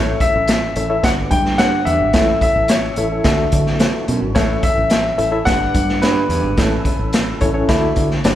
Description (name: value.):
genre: uptempo 1960s-style soul.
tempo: 108 BPM.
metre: 4/4.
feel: straight.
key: A mixolydian.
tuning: A4 = 441 Hz.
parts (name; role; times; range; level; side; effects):
clear concert grand piano; melody; 0.0-8.2 s; B4 to G5; -20 LUFS; left 2 dB; slapback echo, tape echo.
barky reed electric piano; accompaniment; 0.0-8.4 s; G2 to E5; -22 LUFS; left 2 dB; overdrive, fast tremolo, slapback echo.
percussive tonewheel organ; sustained chords; 0.0-8.4 s; D3 to A4; -30 LUFS; right 3 dB; slow rotary speaker, overdrive, chorus vibrato.
breathy baritone saxophone; riff; 0.0-6.8 s; F#2 to A2; -24 LUFS; right 4 dB; slapback echo.
fingered electric bass; bass; 0.0-8.4 s; G1 to D3; -22 LUFS; equal; none.
raw garage drum kit; drums; 0.2-8.4 s; hi-hat, kick drum, snare drum; -18 LUFS; equal; none.
room: light reverb, studio reverb.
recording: live gig heard through the venue's PA, club reverb.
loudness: -14 LUFS.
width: side -12 dB against mid.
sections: 0.0-8.4 A section.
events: none.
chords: 0.0 A; 1.0 G; 2.1 A; 3.3 Dadd9; 4.4 A; 5.5 G; 6.6 A; 7.7 Dadd9.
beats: 0.48 1.04 1.59 | 2.15 2.70 3.25 3.81 | 4.36 4.92 5.47 6.03 | 6.58 7.13 7.69 8.25.